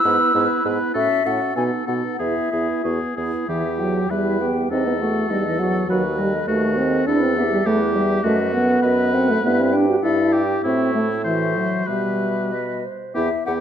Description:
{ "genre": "quick classical-period movement for wind quintet", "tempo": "92-103 BPM", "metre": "2/4", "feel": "rubato", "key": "E major, E minor from 3.5 s", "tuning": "A4 = 439 Hz", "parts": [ { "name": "mellow hollow silver concert flute", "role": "melody", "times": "0.0-13.5 s", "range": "B4 to E6", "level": "-25 LUFS", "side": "left 4 dB", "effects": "none" }, { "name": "clear oboe", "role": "second line", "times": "0.0-13.6 s", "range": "E4 to C5", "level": "-27 LUFS", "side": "left 2 dB", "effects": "none" }, { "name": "mellow French horn", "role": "accompaniment", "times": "0.0-13.6 s", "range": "E3 to F#4", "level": "-21 LUFS", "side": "equal", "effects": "none" }, { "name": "mellow clarinet", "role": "accompaniment", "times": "0.0-13.6 s", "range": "D#4 to C5", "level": "-28 LUFS", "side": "right 7 dB", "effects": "none" }, { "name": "warm bassoon", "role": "bass", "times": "0.1-13.6 s", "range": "D#2 to B2", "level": "-25 LUFS", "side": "right 2 dB", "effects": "none" } ], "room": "moderate recital hall reverb, RT60 1.6 s", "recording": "dark, warm production", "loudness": "-18 LUFS", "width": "side -9 dB against mid", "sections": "0.0-3.5 A section; 3.5-13.2 B section", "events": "none", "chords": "0.0 E/G#; 1.0 F#m7/A; 1.6 B7; 2.2 E; 3.5 Em; 4.7 Esus24; 5.9 B7/D#; 7.1 Em; 8.2 B7/F#; 9.4 Em/G; 10.6 F#m7b5/A; 11.9 Em/B; 12.5 B" }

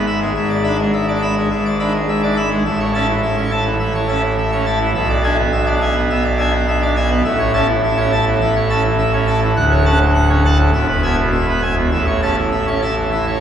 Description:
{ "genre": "classical, organ toccata", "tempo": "104 BPM", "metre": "4/4", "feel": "straight", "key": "A major", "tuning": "A4 = 439 Hz", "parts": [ { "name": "pipe organ, full organ", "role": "solo", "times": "0.0-13.4 s", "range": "D1 to B5", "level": "-14 LUFS", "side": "equal", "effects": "none" } ], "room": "wet cathedral reverb, RT60 5.8 s", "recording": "recorded in a church or concert hall, small room ambience", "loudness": "-14 LUFS", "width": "side -9 dB against mid", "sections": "0.0-13.4 A section", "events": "none", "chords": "0.3 E7/G#; 2.7 A; 5.0 E7/B; 7.2 A; 9.6 Dmaj7; 10.7 E; 11.9 A" }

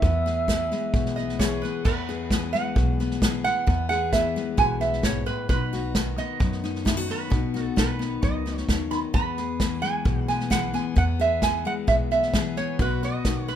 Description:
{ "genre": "honky-tonk and classic country", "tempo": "132 BPM", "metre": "4/4", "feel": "straight", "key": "E major", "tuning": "A4 = 440 Hz", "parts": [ { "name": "wooden flute", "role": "melody", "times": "0.0-1.6 s", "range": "E5", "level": "-28 LUFS", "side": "right 4 dB", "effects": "none" }, { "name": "picked steel-string acoustic guitar", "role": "accompaniment", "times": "0.0-13.6 s", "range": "E2 to G#4", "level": "-29 LUFS", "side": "left 7 dB", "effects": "none" }, { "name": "upright bass", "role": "bass", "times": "0.0-13.6 s", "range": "B1 to F#2", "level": "-29 LUFS", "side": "equal", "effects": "none" }, { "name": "unplugged drum kit", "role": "drums", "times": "0.0-13.5 s", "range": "crash cymbal, hi-hat, kick drum, snare drum", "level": "-26 LUFS", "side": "equal", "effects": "none" }, { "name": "lap resonator guitar", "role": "second line", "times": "1.2-13.6 s", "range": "B4 to B5", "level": "-27 LUFS", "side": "right 5 dB", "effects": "none" } ], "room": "light reverb", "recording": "minimal, uncompressed stereo recording", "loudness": "-22 LUFS", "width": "side -10 dB against mid", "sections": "0.0-1.8 A section; 1.8-13.6 A section", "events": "resonator guitar played with a steel bar solo 1.8-13.6", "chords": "0.0 E; 5.5 B; 9.1 E; 12.8 B" }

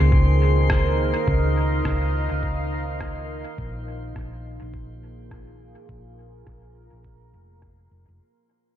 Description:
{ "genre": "ambient dub", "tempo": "104 BPM", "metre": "4/4", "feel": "swing 59% on 16ths", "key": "Bb minor", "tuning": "A4 = 440 Hz", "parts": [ { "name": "deep dark ambient pad", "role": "sustained chords", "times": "0.0-8.2 s", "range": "Bb3 to F5", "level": "-29 LUFS", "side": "right 2 dB", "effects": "chorus, built-in reverb" }, { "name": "hollow-body short-scale fingered electric bass", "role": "bass", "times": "0.0-8.2 s", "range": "F1 to Db2", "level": "-22 LUFS", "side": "equal", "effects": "none" }, { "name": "drifting glass-harmonics texture", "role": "texture", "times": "0.0-8.2 s", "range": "C4 to C6", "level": "-31 LUFS", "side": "left 2 dB", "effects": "chorus, built-in reverb" }, { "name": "electronic kick drum", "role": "drums", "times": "0.1-7.8 s", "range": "none", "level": "-25 LUFS", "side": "equal", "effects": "small room ambience" }, { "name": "electronic rim click", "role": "drums", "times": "0.7-7.8 s", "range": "none", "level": "-34 LUFS", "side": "equal", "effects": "low-pass filter on perc, small room ambience, low-pass filter on snare, dub echo" } ], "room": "light reverb, digital ambience", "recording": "none", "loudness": "-20 LUFS", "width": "side -11 dB against mid", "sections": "0.0-8.2 A section", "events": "fade-out 0.0-8.2; filter sweep on drum 0.0-8.2", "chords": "0.0 Db69; 3.6 Bb5" }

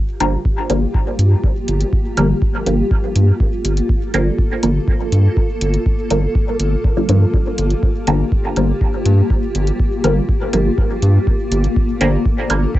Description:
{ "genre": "dub techno", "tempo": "122 BPM", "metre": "4/4", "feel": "straight", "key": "G minor", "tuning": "A4 = 442 Hz", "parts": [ { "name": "granular cloud pad", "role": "sustained chords", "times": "0.2-12.8 s", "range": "Bb3 to A4", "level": "-22 LUFS", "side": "left 1 dB", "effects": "built-in reverb, sidechain pumping, cassette tape" }, { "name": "filtered dub chord stab", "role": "stabs", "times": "0.2-12.7 s", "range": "D3 to Bb3", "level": "-20 LUFS", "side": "equal", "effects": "phaser, sidechain pumping, cassette tape, dub echo" }, { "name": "round analog bass", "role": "bass", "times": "0.2-12.7 s", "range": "G1 to G2", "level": "-15 LUFS", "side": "equal", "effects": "sidechain pumping" }, { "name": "electronic hi-hat", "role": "drums", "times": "0.2-12.6 s", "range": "none", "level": "-27 LUFS", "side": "equal", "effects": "cassette tape" }, { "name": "electronic kick drum", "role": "drums", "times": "0.5-12.8 s", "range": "none", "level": "-17 LUFS", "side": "equal", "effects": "cassette tape" } ], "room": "little or no reverb", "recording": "home recording on cassette, nothing above 8.0 kHz", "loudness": "-14 LUFS", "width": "side -15 dB against mid", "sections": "0.0-12.8 A section", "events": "none", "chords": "0.0 Gm7" }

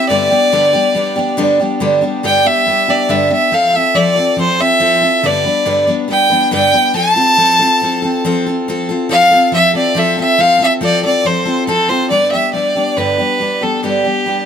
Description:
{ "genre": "country", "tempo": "140 BPM", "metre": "4/4", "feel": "straight", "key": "G mixolydian", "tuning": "A4 = 440 Hz", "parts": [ { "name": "clear fiddle", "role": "melody", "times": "0.0-14.5 s", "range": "G4 to A5", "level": "-12 LUFS", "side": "equal", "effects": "none" }, { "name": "picked steel-string acoustic guitar", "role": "accompaniment", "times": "0.0-14.5 s", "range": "G2 to B4", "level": "-16 LUFS", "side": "equal", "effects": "none" } ], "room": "light reverb", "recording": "close, detailed microphones", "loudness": "-11 LUFS", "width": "side -8 dB against mid", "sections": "0.0-12.1 A section; 12.1-14.5 B section", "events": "none", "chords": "0.1 G; 3.5 F; 5.2 G; 7.0 F; 12.1 G" }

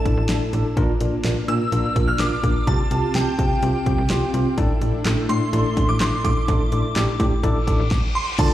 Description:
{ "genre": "synth-pop", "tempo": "126 BPM", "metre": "4/4", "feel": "straight", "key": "unclear", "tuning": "A4 = 443 Hz", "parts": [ { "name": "ensemble organ-string", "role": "sustained chords", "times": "0.0-7.9 s", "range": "C3 to G4", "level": "-28 LUFS", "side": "equal", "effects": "ensemble chorus" }, { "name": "tine electric piano", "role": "accompaniment", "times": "0.1-8.5 s", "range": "C4 to C6", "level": "-26 LUFS", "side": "left 1 dB", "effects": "medium stereo tremolo" }, { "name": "slap-like FM bass", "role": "bass", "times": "0.1-8.5 s", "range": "A1 to C3", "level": "-22 LUFS", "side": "equal", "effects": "none" }, { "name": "pop drum kit", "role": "drums", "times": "0.1-8.5 s", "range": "crash cymbal, handclaps, hi-hat, kick drum, snare drum", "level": "-22 LUFS", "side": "equal", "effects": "none" }, { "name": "shimmering bell with halo", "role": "melody", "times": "1.5-8.5 s", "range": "G5 to F6", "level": "-26 LUFS", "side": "equal", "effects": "ensemble chorus, analog delay" }, { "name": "reverse cymbal and impact", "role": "sound effects", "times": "7.6-8.5 s", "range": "none", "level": "-31 LUFS", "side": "left 4 dB", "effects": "none" } ], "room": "light reverb, digital ambience", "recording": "played on a big sound system in a bare room, large studio reverb", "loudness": "-18 LUFS", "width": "side -13 dB against mid", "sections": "0.0-8.4 A section", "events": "tine electric piano fill 3.9-4.6; reverse cymbal 7.6-8.4; stop 7.9-8.4", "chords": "0.0 Asus4; 0.8 Bb; 2.7 Csus4; 4.6 Asus4" }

